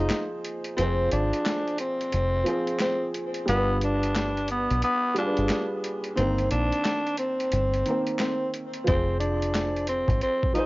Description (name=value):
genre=hip hop, boom-bap hip-hop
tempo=89 BPM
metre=4/4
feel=swing 63% on 16ths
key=F dorian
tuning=A4 = 440 Hz
part: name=growling tenor saxophone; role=melody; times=0.0-10.7 s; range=B3 to Eb4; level=-27 LUFS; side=equal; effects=high-pass filter, low-pass filter, cassette tape, tape echo
part: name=dark upright piano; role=accompaniment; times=0.0-10.7 s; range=Eb3 to C5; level=-30 LUFS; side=right 1 dB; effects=high-pass filter, low-pass filter, cassette tape
part: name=deep dub fingered electric bass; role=bass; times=0.0-10.2 s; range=F1 to B1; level=-27 LUFS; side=equal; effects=none
part: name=boom bap sampler-style drum kit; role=drums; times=0.1-10.7 s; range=handclaps, hi-hat, kick drum, snare drum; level=-30 LUFS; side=equal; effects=overdrive, cassette tape
room=light reverb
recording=home recording on cassette, nothing above 7.4 kHz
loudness=-23 LUFS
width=side -21 dB against mid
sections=0.0-10.7 A section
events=break 0.0-8.9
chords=0.0 Fm; 3.5 G7; 6.2 Cm7/G; 8.9 Fm